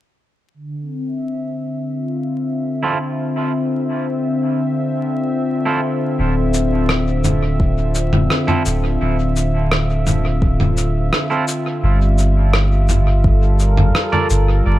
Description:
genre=ambient dub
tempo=85 BPM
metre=4/4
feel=straight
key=unclear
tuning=A4 = 438 Hz
part: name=warm analog pad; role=sustained chords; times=0.5-14.8 s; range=D3 to E5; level=-20 LUFS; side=left 1 dB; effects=chorus
part: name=twangy electric guitar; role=stabs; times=2.8-14.3 s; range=C4 to D5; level=-25 LUFS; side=right 4 dB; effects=low-pass filter, dub echo
part: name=soft dub sub bass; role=bass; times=6.2-14.8 s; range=D1 to G1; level=-16 LUFS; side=equal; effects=tube saturation
part: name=lo-fi sampler-style drum kit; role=drums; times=6.5-14.4 s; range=rim click, shaker, toms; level=-20 LUFS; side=equal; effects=dub echo
part: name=electronic kick drum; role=drums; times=7.6-13.4 s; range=none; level=-17 LUFS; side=equal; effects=none
room=light reverb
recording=vinyl crackle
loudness=-15 LUFS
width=side -15 dB against mid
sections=0.5-6.2 A section; 6.2-14.8 B section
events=none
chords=0.5 Dm9; 11.8 Gm9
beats=| 0.54 1.24 1.95 2.65 | 3.36 4.07 4.77 5.48 | 6.18 6.89 7.60 8.30 | 9.01 9.71 10.42 11.13 | 11.83 12.54 13.24 13.95 | 14.65

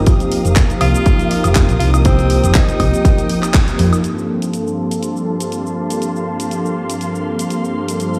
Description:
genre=nu-disco, nu disco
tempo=121 BPM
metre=4/4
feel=swing 54% on 16ths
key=G minor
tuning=A4 = 441 Hz
part: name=warm analog pad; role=accompaniment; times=0.0-8.2 s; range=G2 to A4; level=-21 LUFS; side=equal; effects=chorus, sidechain pumping, tape echo
part: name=dark chamber string section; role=sustained chords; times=0.0-8.2 s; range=Bb3 to Eb6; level=-29 LUFS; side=equal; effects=sidechain pumping, low-pass filter
part: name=hollow-body short-scale fingered electric bass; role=bass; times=0.0-3.9 s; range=F1 to F2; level=-17 LUFS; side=equal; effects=none
part: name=electronic kick drum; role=drums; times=0.1-3.6 s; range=none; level=-15 LUFS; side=equal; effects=none
part: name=house drum kit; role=drums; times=0.1-8.2 s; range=handclaps, hi-hat, shaker, woodblock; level=-26 LUFS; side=equal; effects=none
part: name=breathy tenor saxophone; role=melody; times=0.8-3.8 s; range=C4 to F4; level=-25 LUFS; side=equal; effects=delay
room=light reverb, digital ambience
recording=played on a big sound system in a bare room, stone room reverb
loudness=-16 LUFS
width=mono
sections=0.0-4.0 A section; 4.0-8.2 B section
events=band accent 3.5; filter sweep on string section 4.0-8.2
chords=0.1 F7sus4; 4.0 Gm11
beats=| 0.07 0.56 1.06 1.56 | 2.05 2.55 3.04 3.54 | 4.04 4.53 5.03 5.52 | 6.02 6.52 7.01 7.51 | 8.00

